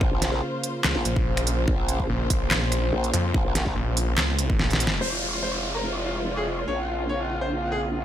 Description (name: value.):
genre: heavy wobble dubstep.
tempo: 144 BPM.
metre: 4/4.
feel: swing 54% on 16ths, half-time.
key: unclear.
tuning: A4 = 440 Hz.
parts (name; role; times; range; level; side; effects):
dark studio string section; sustained chords; 0.0-8.0 s; C3 to C5; -31 LUFS; equal; sidechain pumping, low-pass filter.
growl bass; bass; 0.0-8.0 s; F1 to Bb1; -28 LUFS; equal; chorus, overdrive.
dubstep drum kit; drums; 0.0-7.8 s; finger snaps, handclaps, hi-hat, snare drum; -26 LUFS; right 1 dB; low-pass filter on snare, studio reverb, low-pass filter on hats.
electronic kick drum; drums; 0.0-4.6 s; none; -26 LUFS; equal; studio reverb.
snarling distorted saw bass; bass; 0.8-5.0 s; Bb1 to F2; -25 LUFS; equal; distortion, overdrive.
bright grand piano; melody; 5.0-8.0 s; F4 to Db5; -30 LUFS; equal; dub echo.
downlifter; sound effects; 5.0-8.0 s; none; -32 LUFS; equal; none.
room: little or no reverb.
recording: none.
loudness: -22 LUFS.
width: side -11 dB against mid.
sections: 0.0-5.0 A section; 5.0-8.0 B section.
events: drop 0.0-5.0; drum fill 4.6-5.0; band accent 4.9.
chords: 0.0 Bbmadd9; 5.0 Fm; 6.7 Bbmadd9.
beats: | 0.01 0.43 0.84 1.26 | 1.68 2.09 2.51 2.93 | 3.34 3.76 4.18 4.59 | 5.01 5.43 5.84 6.26 | 6.68 7.09 7.51 7.93.